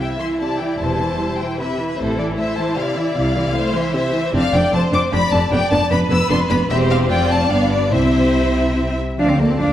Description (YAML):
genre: quick classical-period movement for string orchestra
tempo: 151 BPM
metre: 3/4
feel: rubato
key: C major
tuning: A4 = 438 Hz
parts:
  - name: rich chamber violin section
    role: melody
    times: 0.0-9.7 s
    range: C5 to E6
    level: -23 LUFS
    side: left 4 dB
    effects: none
  - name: rich chamber violin section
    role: second line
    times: 0.0-9.7 s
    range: A4 to F5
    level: -23 LUFS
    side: left 2 dB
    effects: none
  - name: rich chamber viola section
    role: accompaniment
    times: 0.0-9.7 s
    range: C3 to G4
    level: -21 LUFS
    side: right 1 dB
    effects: none
  - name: rich chamber cello section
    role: bass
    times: 0.8-9.7 s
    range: E2 to D4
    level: -22 LUFS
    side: right 1 dB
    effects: none
  - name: rich chamber double bass section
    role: bass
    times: 0.8-9.7 s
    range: E1 to D2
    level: -23 LUFS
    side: right 1 dB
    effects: none
room: wet scoring stage reverb, RT60 1.6 s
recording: vinyl crackle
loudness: -15 LUFS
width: side -11 dB against mid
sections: 0.0-9.2 A section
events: none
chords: 0.0 C; 0.8 C/E; 2.0 Am; 3.2 Am/C; 4.3 Dm7/F; 5.5 G7/F (rootless); 6.7 C/E; 7.1 F; 7.5 G7; 7.9 C; 9.2 Dm